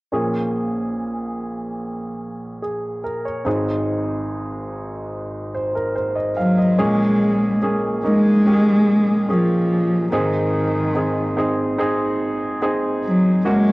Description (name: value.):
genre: pop.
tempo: 72 BPM.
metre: 4/4.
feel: straight.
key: unclear.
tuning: A4 = 438 Hz.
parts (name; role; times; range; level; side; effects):
clear grand piano; accompaniment; 0.1-13.7 s; Gb1 to F5; -21 LUFS; right 1 dB; cassette tape.
dark cello; melody; 6.4-13.7 s; Eb3 to Ab3; -17 LUFS; equal; cassette tape.
room: moderate spring reverb, RT60 1.5 s, small room ambience.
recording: home recording on cassette.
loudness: -18 LUFS.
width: side -22 dB against mid.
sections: 0.1-6.8 A section; 6.8-13.7 B section.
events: none.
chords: 0.1 Bbm7; 3.5 Ab; 6.8 Bbm7; 10.1 Ab.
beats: | 0.12 0.96 1.79 2.62 | 3.46 4.29 5.12 5.96 | 6.79 7.62 8.46 9.29 | 10.12 10.96 11.79 12.62 | 13.46.